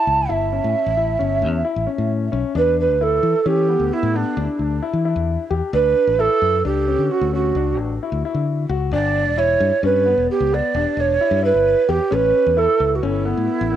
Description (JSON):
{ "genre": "progressive instrumental, band music in an uneven meter", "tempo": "132 BPM", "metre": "7/4", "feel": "straight", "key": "E dorian", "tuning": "A4 = 440 Hz", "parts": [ { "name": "breathy mellow jazz flute", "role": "melody", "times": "0.0-13.8 s", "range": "D4 to A5", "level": "-18 LUFS", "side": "right 4 dB", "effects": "cassette tape, analog delay" }, { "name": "warm concert grand piano", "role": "arpeggios", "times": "0.0-13.8 s", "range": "B3 to G4", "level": "-25 LUFS", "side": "left 9 dB", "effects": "none" }, { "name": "fingered electric bass", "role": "bass", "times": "0.1-13.8 s", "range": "E1 to E3", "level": "-22 LUFS", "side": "left 2 dB", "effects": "none" } ], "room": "studio ambience", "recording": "home recording on cassette", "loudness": "-16 LUFS", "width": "side -10 dB against mid", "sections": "0.0-2.6 A section; 2.6-13.8 A section", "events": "none", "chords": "0.0 A7; 2.6 E7(no3); 5.7 Dmaj7; 8.9 G6; 12.1 A7" }